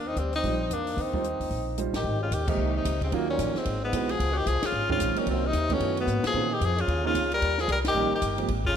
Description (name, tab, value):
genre	jazz, small-group swing and bop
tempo	223 BPM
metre	4/4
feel	swing 61% on 8ths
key	Ab major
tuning	A4 = 443 Hz
part	clear tenor saxophone	melody	0.0-8.8 s	Bb3 to Bb4	-28 LUFS	left 4 dB	ping-pong delay
part	trombone with cup mute	second line	0.0-8.8 s	Gb2 to C4	-33 LUFS	right 1 dB	none
part	upright bass	bass	0.0-8.7 s	G1 to Bb2	-30 LUFS	equal	none
part	compact cocktail drum kit	drums	0.2-8.7 s	crash cymbal, hi-hat, kick drum, ride cymbal, snare drum, toms	-35 LUFS	left 1 dB	none
part	warm baby grand piano	accompaniment	0.4-8.5 s	Eb3 to C5	-32 LUFS	right 8 dB	none
room	moderate lush hall reverb, RT60 2.4 s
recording	dreamy mix soaked in reverb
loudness	-24 LUFS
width	side -8 dB against mid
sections	0.0-2.0 A section; 2.0-8.8 B section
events	band accent 1.9, 2.5, 4.6, 6.2, 7.8; drum fill 6.1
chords	0.0 Eb69; 2.0 Abmaj9; 3.1 Ebm9; 3.7 Ab7alt; 4.2 Dbmaj9; 5.3 Cm7b5; 5.8 B9; 6.3 Bbm11; 7.4 Eb7